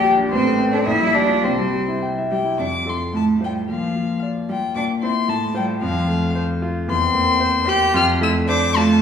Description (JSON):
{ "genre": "quick classical-period movement for piano trio", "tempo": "111 BPM", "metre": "2/4", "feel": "rubato", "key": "F major", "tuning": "A4 = 435 Hz", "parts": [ { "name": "rich violin", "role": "melody", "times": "0.0-9.0 s", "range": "C5 to G6", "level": "-23 LUFS", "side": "left 6 dB", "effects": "none" }, { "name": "rich cello", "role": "second line", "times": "0.0-9.0 s", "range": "F3 to G4", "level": "-21 LUFS", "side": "right 2 dB", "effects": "none" }, { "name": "clear concert grand piano", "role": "accompaniment", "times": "0.0-9.0 s", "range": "A1 to D6", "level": "-21 LUFS", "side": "left 1 dB", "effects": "none" } ], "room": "wet recital hall reverb, RT60 1.4 s", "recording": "heard from further back in the room, small room ambience", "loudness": "-17 LUFS", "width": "side -7 dB against mid", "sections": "0.0-2.6 A section; 2.6-9.0 B section", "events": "none", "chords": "0.3 Amadd11; 0.9 Gm7/Bb; 1.4 C; 2.6 F; 3.1 F/A; 3.7 Bb; 4.8 C7/Bb; 5.3 F/A; 5.8 F; 6.9 C7/E; 7.9 F", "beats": "| 0.31 0.86 | 1.44 2.02 | 2.59 3.14 | 3.69 4.23 | 4.76 5.29 | 5.82 6.35 | 6.89 7.42 | 7.95 8.49" }